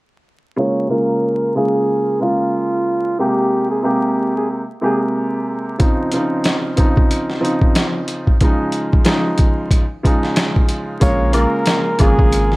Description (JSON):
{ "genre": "hip hop, boom-bap hip-hop", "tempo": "92 BPM", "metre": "4/4", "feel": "swing 58% on 16ths", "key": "Bb dorian", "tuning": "A4 = 440 Hz", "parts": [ { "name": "trumpet with bucket mute", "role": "melody", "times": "0.6-5.0, 11.0-12.6 s", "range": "F4 to Db5", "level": "-19 LUFS", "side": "equal", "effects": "high-pass filter, low-pass filter" }, { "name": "warm upright piano", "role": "accompaniment", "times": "0.6-12.6 s", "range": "C3 to G4", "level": "-18 LUFS", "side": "right 1 dB", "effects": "high-pass filter, low-pass filter" }, { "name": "boom bap sampler-style drum kit", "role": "drums", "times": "5.8-12.6 s", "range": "hi-hat, kick drum, snare drum", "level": "-15 LUFS", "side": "equal", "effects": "none" }, { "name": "soft dub sub bass", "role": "bass", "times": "11.0-12.6 s", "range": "Ab1 to Bb1", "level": "-18 LUFS", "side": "equal", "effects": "tube saturation" }, { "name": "tube shaker and woodblock", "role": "percussion", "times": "11.0-12.5 s", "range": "none", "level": "-28 LUFS", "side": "left 1 dB", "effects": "none" } ], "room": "small room ambience", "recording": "dry, gritty hardware recording, vinyl crackle", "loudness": "-14 LUFS", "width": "side -22 dB against mid", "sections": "0.6-11.0 A section; 11.0-12.6 B section", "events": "filter sweep 0.6-11.0", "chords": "0.6 Bbm7; 3.2 Abmaj9/C; 5.8 Dbmaj9; 8.4 Eb9sus4; 11.0 Bbm7", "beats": "| 0.58 1.24 1.89 2.54 | 3.19 3.85 4.50 5.15 | 5.80 6.45 7.11 7.76 | 8.41 9.06 9.71 10.37 | 11.02 11.67 12.32" }